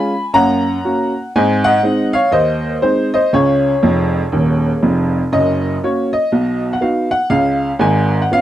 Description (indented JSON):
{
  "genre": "jazz, stride piano",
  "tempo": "121 BPM",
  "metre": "4/4",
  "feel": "swing 61% on 8ths",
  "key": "F# major",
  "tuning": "A4 = 439 Hz",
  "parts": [
    { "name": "clear upright piano", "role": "solo", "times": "0.0-8.4 s", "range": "D#1 to B5", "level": "-13 LUFS", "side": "equal", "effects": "none" }
  ],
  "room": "light reverb",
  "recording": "dry, close 1970s-style studio recording",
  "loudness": "-13 LUFS",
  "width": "side -12 dB against mid",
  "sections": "0.0-5.3 A section; 5.3-8.4 B section",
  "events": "upright piano fill 3.8-5.3",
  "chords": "0.3 F#; 1.3 G#7; 3.3 C#; 5.3 F#; 6.3 B; 7.3 C#",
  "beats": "0.33 0.83 | 1.33 1.82 2.32 2.82 | 3.32 3.81 4.31 4.81 | 5.31 5.80 6.30 6.80 | 7.30 7.80 8.30"
}